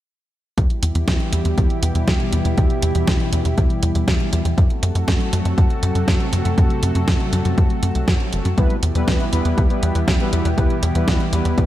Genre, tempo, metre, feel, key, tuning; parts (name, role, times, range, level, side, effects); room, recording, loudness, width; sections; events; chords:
italo disco; 120 BPM; 4/4; straight; E minor; A4 = 440 Hz
lush unison pad; sustained chords; 0.6-11.7 s; B2 to A4; -23 LUFS; equal; chorus
tight sequencer bass; bass; 0.6-11.7 s; F#1 to F#2; -20 LUFS; equal
clean 12-bit digital drum machine; drums; 0.6-11.7 s; hi-hat, snare drum; -25 LUFS; right 1 dB; gated reverb
electronic kick drum; drums; 0.6-11.7 s; -19 LUFS; equal
analog synth brass; stabs; 8.6-11.6 s; G3 to B4; -24 LUFS; left 2 dB; chorus
little or no reverb; -16 LUFS; side -13 dB against mid
0.6-11.7 A section
0.6 Em; 4.6 F#dim; 8.6 Em